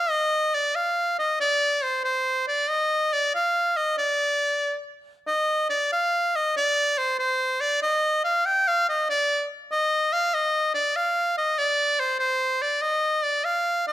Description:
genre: medieval dance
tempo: 94 BPM (dotted quarters)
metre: 6/8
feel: straight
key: D phrygian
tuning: A4 = 437 Hz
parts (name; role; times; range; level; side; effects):
- edgy shawm; solo; 0.0-13.9 s; C5 to G5; -21 LUFS; equal; none
room: moderate recital hall reverb, RT60 1.4 s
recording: close, detailed microphones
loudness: -21 LUFS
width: side -14 dB against mid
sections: 0.0-5.3 A section; 5.3-13.9 A section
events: speeding up 0.0-13.9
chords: none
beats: | 0.11 0.76 | 1.41 2.05 | 2.70 3.35 | 3.99 4.63 | 5.27 5.91 | 6.55 7.19 | 7.82 8.46 | 9.09 9.72 | 10.35 10.98 | 11.60 12.23 | 12.85 13.47

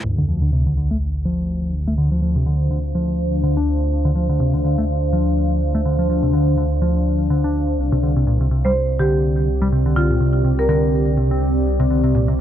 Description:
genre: breakbeat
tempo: 124 BPM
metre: 4/4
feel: swing 56% on 16ths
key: unclear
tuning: A4 = 439 Hz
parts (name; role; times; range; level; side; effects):
- detuned saw bass; bass; 0.0-12.4 s; C2 to D2; -20 LUFS; equal; none
- sub drop; sound effects; 0.0-2.0 s; none; -26 LUFS; equal; none
- deep dark ambient pad; sustained chords; 2.4-12.4 s; C4 to F5; -23 LUFS; left 1 dB; chorus, built-in reverb
- deep dub picked electric bass; riff; 0.2-12.3 s; Bb2 to D4; -20 LUFS; equal; low-pass filter, digital delay
- marimba with medium mallets; melody; 8.6-10.8 s; F4 to C5; -23 LUFS; right 2 dB; telephone sound, digital delay
room: small room ambience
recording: low-pass filter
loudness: -16 LUFS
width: side -10 dB against mid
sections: 0.0-12.4 A section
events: impact 0.0-2.0; filter sweep on picked electric bass 0.0-12.4; filter sweep 0.0-12.4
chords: 0.0 Dm7; 7.8 Csus2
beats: | 0.05 0.53 1.01 1.50 | 1.98 2.46 2.95 3.43 | 3.92 4.40 4.88 5.37 | 5.85 6.34 6.82 7.30 | 7.79 8.27 8.76 9.24 | 9.72 10.21 10.69 11.18 | 11.66 12.14

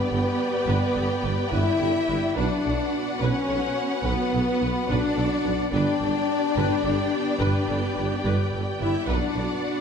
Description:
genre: cinematic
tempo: 72 BPM (dotted quarters)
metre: 12/8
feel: straight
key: unclear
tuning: A4 = 440 Hz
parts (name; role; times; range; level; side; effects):
- warm symphonic violin section; melody; 0.0-9.8 s; F#5 to G5; -35 LUFS; left 2 dB; none
- warm symphonic violin section; second line; 0.0-9.8 s; B4 to E5; -34 LUFS; left 5 dB; none
- warm symphonic viola section; accompaniment; 0.0-9.8 s; A4 to D5; -34 LUFS; equal; none
- rich symphonic string section; sustained chords; 0.0-9.8 s; B3 to F#5; -32 LUFS; equal; none
- warm French horn section; sustained chords; 0.0-9.8 s; B3 to E4; -27 LUFS; left 5 dB; none
- warm symphonic cello section; bass; 0.0-9.8 s; B3 to E4; -30 LUFS; right 3 dB; none
- dark tuba; bass; 0.1-9.5 s; G1 to B1; -31 LUFS; right 3 dB; none
- rich symphonic double bass section; bass; 0.1-9.4 s; G1 to B1; -29 LUFS; right 2 dB; none
room: wet scoring stage reverb, RT60 2.1 s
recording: none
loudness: -22 LUFS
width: side -7 dB against mid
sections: 0.0-9.8 A section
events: none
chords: 0.0 G; 2.4 Bm; 5.7 G; 9.1 Bm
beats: 0.67 1.52 | 2.37 3.22 4.06 4.89 | 5.73 6.57 7.41 8.25 | 9.09

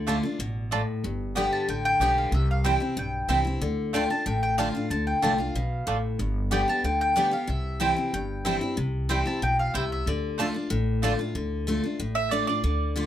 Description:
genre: bluegrass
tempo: 186 BPM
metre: 4/4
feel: straight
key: D dorian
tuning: A4 = 440 Hz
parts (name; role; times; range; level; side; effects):
- mandolin; melody; 0.0-11.2 s; D5 to A5; -27 LUFS; left 1 dB; none
- picked steel-string acoustic guitar; accompaniment; 0.0-13.1 s; G2 to G4; -29 LUFS; left 3 dB; none
- upright bass; bass; 0.0-13.1 s; G1 to D2; -29 LUFS; equal; none
- mandolin; stabs; 0.1-13.1 s; A3 to A5; -28 LUFS; right 7 dB; none
room: moderate small room reverb, RT60 0.5 s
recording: none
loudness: -24 LUFS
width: side -11 dB against mid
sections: 0.0-1.0 A section; 1.0-11.4 A section; 11.4-13.1 B section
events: mandolin solo 11.4-13.1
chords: 0.0 Dm; 1.0 G; 2.3 C; 3.6 Dm; 6.2 G; 7.5 C; 10.1 Dm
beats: 0.07 0.40 0.72 | 1.04 1.36 1.68 2.01 | 2.33 2.65 2.97 3.29 | 3.62 3.94 4.26 4.58 | 4.91 5.23 5.55 5.87 | 6.20 6.52 6.84 7.17 | 7.49 7.81 8.13 8.46 | 8.78 9.10 9.42 9.74 | 10.07 10.39 10.71 11.03 | 11.35 11.68 12.00 12.32 | 12.64 12.96

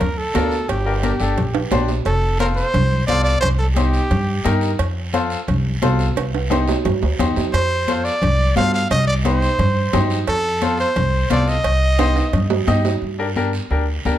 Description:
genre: latin, cumbia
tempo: 175 BPM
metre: 4/4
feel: straight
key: unclear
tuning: A4 = 440 Hz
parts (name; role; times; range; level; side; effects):
- warm trumpet; melody; 0.0-4.6, 7.5-12.7 s; G4 to F5; -21 LUFS; right 1 dB; none
- upright bass; bass; 0.0-14.2 s; F1 to G2; -20 LUFS; equal; none
- congas; percussion; 0.0-14.2 s; none; -25 LUFS; left 3 dB; none
- cowbell and timbales; percussion; 0.0-12.9 s; none; -25 LUFS; right 8 dB; none
- guiro; percussion; 0.0-14.2 s; none; -34 LUFS; right 4 dB; none
- bright upright piano; accompaniment; 0.3-14.2 s; D4 to Eb5; -23 LUFS; left 3 dB; none
room: light reverb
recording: dark, warm production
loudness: -16 LUFS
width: side -12 dB against mid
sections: 0.0-2.1 A section; 2.1-13.0 B section; 13.0-14.2 C section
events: drum fill 1.5-2.1, 6.2-7.5, 12.0-13.0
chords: 0.0 Bb; 0.7 Gm; 2.1 F; 3.4 Cm; 4.8 F; 6.2 Cm; 7.5 F6; 8.9 Cm; 10.3 F; 11.6 Cm; 13.0 Gm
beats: 0.00 0.34 | 0.69 1.03 1.37 1.71 | 2.06 2.40 2.74 3.08 | 3.42 3.77 4.11 4.45 | 4.79 5.14 5.48 5.82 | 6.16 6.51 6.85 7.19 | 7.53 7.88 8.22 8.56 | 8.90 9.25 9.59 9.93 | 10.28 10.62 10.96 11.30 | 11.65 11.99 12.34 12.68 | 13.02 13.37 13.71 14.05

